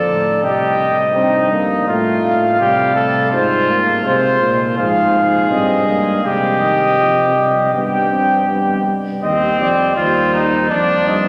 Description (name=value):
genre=classical, imitative canzona for brass ensemble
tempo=82 BPM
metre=4/4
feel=straight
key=C minor from 3.3 s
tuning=A4 = 440 Hz
part: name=warm cornet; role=melody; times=0.0-11.3 s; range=C5 to G5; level=-19 LUFS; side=equal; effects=none
part: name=clear trumpet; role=second line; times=0.0-11.3 s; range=C4 to A4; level=-20 LUFS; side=equal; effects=none
part: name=mellow trombone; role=accompaniment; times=0.0-11.3 s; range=Eb3 to C4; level=-25 LUFS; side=equal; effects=none
part: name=mellow tuba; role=bass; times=0.0-11.3 s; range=Eb2 to C3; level=-23 LUFS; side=equal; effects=none
room=wet cathedral reverb, RT60 5.7 s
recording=none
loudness=-15 LUFS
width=mono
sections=0.0-9.2 A section; 9.2-11.3 B section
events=none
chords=0.4 Cm; 1.9 F/A; 3.3 Fm/Ab; 6.2 Cm; 7.7 G; 9.2 Cm/Eb; 10.7 Dm/F